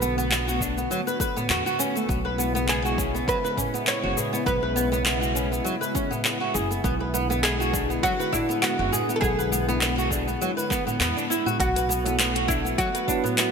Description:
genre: organic downtempo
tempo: 101 BPM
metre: 4/4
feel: swing 55% on 16ths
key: B dorian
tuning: A4 = 440 Hz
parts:
  - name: warm analog pad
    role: sustained chords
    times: 0.0-13.5 s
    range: C#3 to F#4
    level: -32 LUFS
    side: left 1 dB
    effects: chorus, sidechain pumping
  - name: flamenco guitar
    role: arpeggios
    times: 0.0-13.5 s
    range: F#3 to B4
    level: -27 LUFS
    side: right 1 dB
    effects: analog chorus, ping-pong delay
  - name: upright bass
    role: bass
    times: 0.0-12.7 s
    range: F#1 to E2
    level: -30 LUFS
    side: equal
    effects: none
  - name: deep house drum kit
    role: drums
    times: 0.0-13.5 s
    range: handclaps, hi-hat, shaker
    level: -27 LUFS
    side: left 1 dB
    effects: gated reverb
  - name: darbuka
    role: percussion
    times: 0.0-13.4 s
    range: none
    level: -37 LUFS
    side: right 2 dB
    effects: none
  - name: electronic kick drum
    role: drums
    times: 0.6-13.2 s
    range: none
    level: -30 LUFS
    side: equal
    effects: none
  - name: oud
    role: melody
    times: 2.7-13.5 s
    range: E4 to C#5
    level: -27 LUFS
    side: equal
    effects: ping-pong delay
  - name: tine electric piano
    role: accompaniment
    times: 12.0-13.5 s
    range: F#3 to B4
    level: -30 LUFS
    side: right 5 dB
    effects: overdrive, wide subtle chorus, sidechain pumping
room: moderate lush hall reverb, RT60 2.5 s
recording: bright 1980s-style digital production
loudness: -22 LUFS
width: side -6 dB against mid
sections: 0.0-11.6 A section; 11.6-13.5 B section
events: none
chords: 0.0 Bm7; 2.1 C#m7; 6.8 E7; 11.6 Bm7

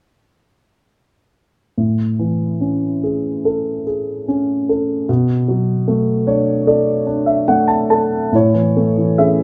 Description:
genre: classical, lyrical solo piano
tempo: 70-78 BPM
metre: 4/4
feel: rubato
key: A major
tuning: A4 = 444 Hz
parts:
  - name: dark grand piano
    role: solo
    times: 1.8-9.4 s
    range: A2 to A5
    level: -17 LUFS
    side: equal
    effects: none
room: light reverb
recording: close, detailed microphones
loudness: -17 LUFS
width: mono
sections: 1.8-8.3 A section; 8.3-9.4 B section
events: grand piano fill 5.9-8.3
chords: 1.8 Amaj7; 5.1 Bm7; 8.3 Amaj7

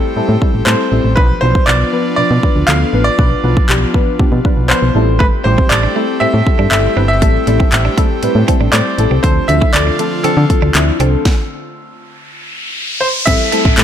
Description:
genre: dance-pop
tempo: 119 BPM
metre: 4/4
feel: straight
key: A minor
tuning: A4 = 438 Hz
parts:
  - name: bright grand piano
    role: melody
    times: 0.0-13.7 s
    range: A4 to F5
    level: -18 LUFS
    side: right 1 dB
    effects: tape echo
  - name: deep mellow chord stab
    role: accompaniment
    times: 0.0-13.8 s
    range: F3 to C5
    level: -18 LUFS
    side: left 2 dB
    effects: chorus, sidechain pumping
  - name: airy breathy pad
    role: sustained chords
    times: 0.0-13.8 s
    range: D3 to G4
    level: -23 LUFS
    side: left 1 dB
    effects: chorus, sidechain pumping
  - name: solid FM bass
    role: bass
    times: 0.2-13.8 s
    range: G1 to D3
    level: -14 LUFS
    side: equal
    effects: sidechain pumping
  - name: house drum kit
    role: drums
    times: 0.4-13.8 s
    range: crash cymbal, handclaps, hi-hat, kick drum, snare drum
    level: -14 LUFS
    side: equal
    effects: none
  - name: direct-recorded clean electric guitar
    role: riff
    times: 5.2-13.7 s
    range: A3 to E4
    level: -23 LUFS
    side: right 8 dB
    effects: wide subtle chorus
  - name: riser and downlifter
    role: sound effects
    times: 12.3-13.8 s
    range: none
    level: -19 LUFS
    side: left 1 dB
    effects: none
room: light reverb, digital ambience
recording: none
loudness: -10 LUFS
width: side -10 dB against mid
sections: 0.0-13.3 A section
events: stop 11.3-13.3; riser 12.3-13.3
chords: 0.0 Am7; 1.2 Bdim; 5.0 Am7; 9.2 Dm7; 13.3 Am7

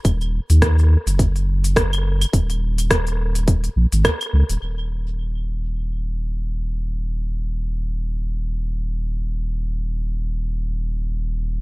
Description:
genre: organic downtempo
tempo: 105 BPM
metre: 4/4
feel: swing 57% on 16ths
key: Eb minor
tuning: A4 = 440 Hz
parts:
  - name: warm sub bass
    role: bass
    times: 0.0-11.6 s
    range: Eb1 to Eb2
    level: -20 LUFS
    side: equal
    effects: none
  - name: electronic kick drum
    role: drums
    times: 0.0-4.2 s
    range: none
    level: -18 LUFS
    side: equal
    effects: none
  - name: organic electronic drum kit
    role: drums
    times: 0.0-4.6 s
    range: claves, hi-hat, rim click, shaker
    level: -23 LUFS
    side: equal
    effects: analog delay
room: little or no reverb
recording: echo-heavy mix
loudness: -19 LUFS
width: side -23 dB against mid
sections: 0.0-4.6 A section; 4.6-11.6 B section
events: none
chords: none

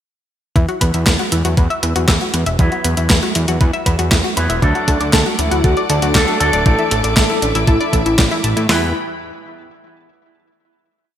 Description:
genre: italo disco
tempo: 118 BPM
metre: 4/4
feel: straight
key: unclear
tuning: A4 = 441 Hz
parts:
  - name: analog pluck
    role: arpeggios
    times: 0.6-8.9 s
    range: D4 to A5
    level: -22 LUFS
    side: left 2 dB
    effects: chorus, digital delay
  - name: fat analog bass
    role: bass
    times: 0.6-8.9 s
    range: D1 to A2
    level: -19 LUFS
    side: equal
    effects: none
  - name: clean 12-bit digital drum machine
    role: drums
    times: 0.6-8.8 s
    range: hi-hat, kick drum, snare drum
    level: -15 LUFS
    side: equal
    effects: overdrive, small room ambience
  - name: clean 12-bit digital drum machine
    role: drums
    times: 0.6-8.7 s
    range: handclaps, hi-hat, snare drum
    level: -18 LUFS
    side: equal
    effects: overdrive, small room ambience, gated reverb
  - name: electric guitar with an envelope filter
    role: stabs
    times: 2.6-8.9 s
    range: E3 to B4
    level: -23 LUFS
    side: right 1 dB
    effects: spring reverb, digital delay
  - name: clear studio string section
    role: sustained chords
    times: 4.6-8.9 s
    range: E3 to D6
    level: -26 LUFS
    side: left 1 dB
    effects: none
  - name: wide unison lead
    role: melody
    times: 5.1-8.9 s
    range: D4 to A4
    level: -20 LUFS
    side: equal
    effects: digital delay
room: moderate lush hall reverb, RT60 2.0 s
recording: bright 1980s-style digital production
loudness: -13 LUFS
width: side -10 dB against mid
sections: 0.6-8.7 verse; 8.7-10.7 final chord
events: none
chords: 0.6 Esus2; 4.6 D; 6.7 Asus4; 8.7 Em

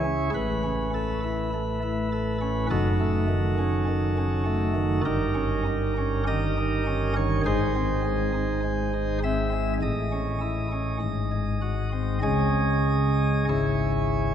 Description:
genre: classical, chorale-style piece for pipe organ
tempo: 50 BPM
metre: 4/4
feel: straight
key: unclear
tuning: A4 = 437 Hz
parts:
  - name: chamber organ, sparkling flutes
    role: solo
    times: 0.0-14.3 s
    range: F#1 to E5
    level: -23 LUFS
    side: equal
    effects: none
room: wet church reverb, RT60 2.9 s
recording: minimal, uncompressed stereo recording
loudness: -23 LUFS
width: side -9 dB against mid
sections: 0.0-14.3 A section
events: none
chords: 0.3 A; 2.7 D#m7b5/F#; 5.1 D#7/G; 7.5 G#; 9.8 A; 11.0 G#7; 12.2 C#m

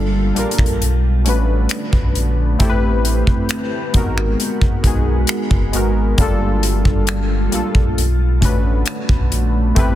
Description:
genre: contemporary R&B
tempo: 67 BPM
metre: 4/4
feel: straight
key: unclear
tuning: A4 = 440 Hz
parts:
  - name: warm analog keys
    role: accompaniment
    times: 0.0-10.0 s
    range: G3 to B4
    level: -22 LUFS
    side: left 2 dB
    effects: chorus
  - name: glassy FM pad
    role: sustained chords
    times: 0.0-10.0 s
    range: D3 to A5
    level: -24 LUFS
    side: right 1 dB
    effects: ensemble chorus, built-in reverb, sidechain pumping
  - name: sub bass with octave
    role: bass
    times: 0.0-10.0 s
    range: F#1 to B1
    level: -18 LUFS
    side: equal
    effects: none
  - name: modern studio drum kit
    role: drums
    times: 0.4-10.0 s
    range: finger snaps, hi-hat, kick drum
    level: -18 LUFS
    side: equal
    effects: soft clipping on snare
room: small room reverb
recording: dense, heavily limited modern master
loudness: -14 LUFS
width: side -13 dB against mid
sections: 0.0-10.0 A section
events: none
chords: 0.0 Gm9; 0.8 Bm9; 2.6 Am9; 3.9 G#m9; 6.2 Gm9; 8.0 Bm9

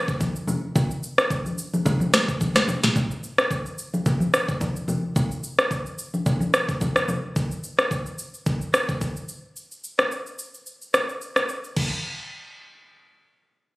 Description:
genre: amapiano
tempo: 109 BPM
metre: 4/4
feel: swing 55% on 16ths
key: none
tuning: none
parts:
  - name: afro-pop drum kit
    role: drums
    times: 0.1-11.9 s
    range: crash cymbal, kick drum, rim click, shaker, snare drum, toms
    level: -22 LUFS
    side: equal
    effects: none
  - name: congas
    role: percussion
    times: 0.2-7.2 s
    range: none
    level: -26 LUFS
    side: equal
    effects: none
room: light reverb, digital ambience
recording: recorded on a phone in the room, studio reverb, compression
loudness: -22 LUFS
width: side -21 dB against mid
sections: 0.0-3.0 A section; 3.0-11.8 B section; 11.8-13.8 C section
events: drop 0.0-3.0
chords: none

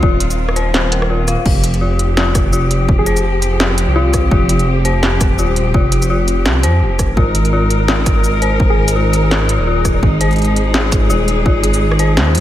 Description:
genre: half-time drum and bass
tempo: 168 BPM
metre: 4/4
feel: swing 57% on 16ths, half-time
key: F minor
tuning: A4 = 440 Hz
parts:
  - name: clear studio cello section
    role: sustained chords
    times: 0.0-12.4 s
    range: Eb3 to Bb4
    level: -20 LUFS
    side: equal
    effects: sidechain pumping
  - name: dark detuned synth bell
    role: arpeggios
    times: 0.0-12.4 s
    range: F4 to F5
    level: -20 LUFS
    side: left 4 dB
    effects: chorus, tape echo
  - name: dark detuned saw bass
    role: bass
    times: 0.0-12.4 s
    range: Eb1 to Ab2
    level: -15 LUFS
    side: equal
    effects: none
  - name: electronic kick drum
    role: drums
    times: 0.0-11.5 s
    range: none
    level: -15 LUFS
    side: equal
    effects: none
  - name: industrial drum kit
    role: drums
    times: 0.2-12.4 s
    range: crash cymbal, hi-hat, rim click, shaker, snare drum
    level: -19 LUFS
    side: equal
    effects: none
  - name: soft struck synth lead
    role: melody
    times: 3.0-4.5, 8.7-8.9 s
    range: F4 to Ab4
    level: -24 LUFS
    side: equal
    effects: chorus, phaser, tape echo
room: light reverb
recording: none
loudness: -12 LUFS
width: side -12 dB against mid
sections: 0.0-1.5 A section; 1.5-12.4 A section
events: drop 0.0-1.5, 1.5-12.4; kick drops out 1.1-1.5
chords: 0.0 Ebsus2; 1.5 Fsus2; 7.2 Ab

